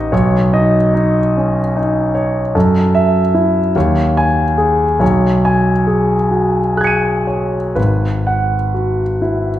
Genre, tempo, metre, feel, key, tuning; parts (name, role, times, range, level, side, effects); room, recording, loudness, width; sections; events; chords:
classical, impressionist solo piano; 40-50 BPM (dotted quarters); 6/8; rubato; A4 = 440 Hz
warm concert grand piano; solo; 0.0-9.6 s; G#1 to D#7; -12 LUFS; equal
wet recital hall reverb, RT60 1.4 s; recorded in a church or concert hall; -12 LUFS; side -12 dB against mid
0.0-9.6 A section
0.1 Badd9; 2.5 F#m7; 3.7 D#7sus4; 5.0 B69; 7.8 G#m7